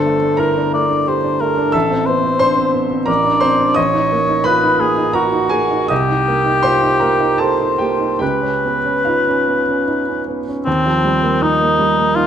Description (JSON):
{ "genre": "classical, impressionist duo for cor anglais and grand piano", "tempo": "70-91 BPM", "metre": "3/4", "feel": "rubato", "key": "unclear", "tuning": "A4 = 440 Hz", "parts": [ { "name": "mellow cor anglais", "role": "melody", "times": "0.0-12.3 s", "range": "C4 to D5", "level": "-16 LUFS", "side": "left 2 dB", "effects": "none" }, { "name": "clear baby grand piano", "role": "accompaniment", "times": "0.0-12.3 s", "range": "G1 to E6", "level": "-16 LUFS", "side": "right 2 dB", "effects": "none" } ], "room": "moderate recital hall reverb, RT60 1.3 s", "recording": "none", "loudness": "-13 LUFS", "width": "side -9 dB against mid", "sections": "0.0-10.7 A section; 10.7-12.3 B section", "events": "none", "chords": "0.0 Gmadd9; 1.7 Amadd9; 3.1 Csus2/A; 3.8 Bmaj7/A; 5.9 Cm7; 8.2 Db9; 10.7 Eb69" }